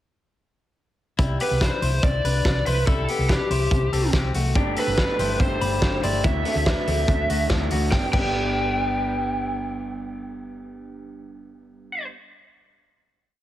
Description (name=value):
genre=jangly indie pop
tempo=142 BPM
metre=4/4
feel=straight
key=G major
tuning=A4 = 440 Hz
part: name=direct-recorded clean electric guitar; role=arpeggios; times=1.2-9.2 s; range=G3 to B5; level=-29 LUFS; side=left 6 dB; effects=spring reverb, slapback echo
part: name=hollow-body short-scale fingered electric bass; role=bass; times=1.2-12.1 s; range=G1 to D2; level=-26 LUFS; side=equal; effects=none
part: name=loose indie drum kit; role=drums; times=1.2-8.3 s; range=crash cymbal, hi-hat, kick drum, snare drum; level=-24 LUFS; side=equal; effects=none
part: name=lead guitar through a small cranked amp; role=melody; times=1.4-12.1 s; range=G4 to G5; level=-26 LUFS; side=left 1 dB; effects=overdrive, slapback echo
part: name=electric guitar through a small old amp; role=accompaniment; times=4.5-12.2 s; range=G2 to D5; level=-30 LUFS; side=right 4 dB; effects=spring reverb
room=light reverb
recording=heavily compressed radio sound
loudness=-20 LUFS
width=side -13 dB against mid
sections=1.2-7.9 verse; 7.9-11.3 final chord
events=none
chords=1.2 Cadd9; 4.6 Gsus2; 6.2 Dadd9; 7.9 G